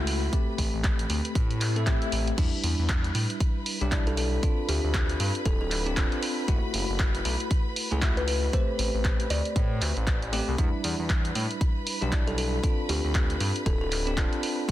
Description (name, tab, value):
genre	deep house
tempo	117 BPM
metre	4/4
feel	swing 59% on 16ths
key	unclear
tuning	A4 = 440 Hz
part	bell-like tine electric piano	stabs	0.0-14.7 s	G3 to A4	-33 LUFS	left 1 dB	fast stereo tremolo, sidechain pumping, digital delay
part	smooth synth bass	bass	0.0-14.7 s	D1 to A2	-29 LUFS	equal	sidechain pumping
part	dark studio violin section	texture	0.0-14.7 s	B4 to B5	-39 LUFS	equal	none
part	punchy analog drum machine	drums	0.1-14.7 s	crash cymbal, handclaps, hi-hat	-32 LUFS	right 1 dB	none
part	electronic kick drum	drums	0.3-14.7 s	none	-26 LUFS	equal	none
part	swell	sound effects	1.5-2.4 s	none	-36 LUFS	left 3 dB	none
part	kalimba	melody	4.1-13.9 s	G4 to D5	-34 LUFS	left 2 dB	digital delay
room	light reverb, digital ambience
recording	dense, heavily limited modern master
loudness	-24 LUFS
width	side -14 dB against mid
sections	0.0-14.7 A section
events	swell 1.5-2.4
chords	0.3 Am7; 2.4 Em7; 4.4 Dm7; 6.5 F#m7; 8.5 Am7; 10.6 Em7; 12.6 Dm7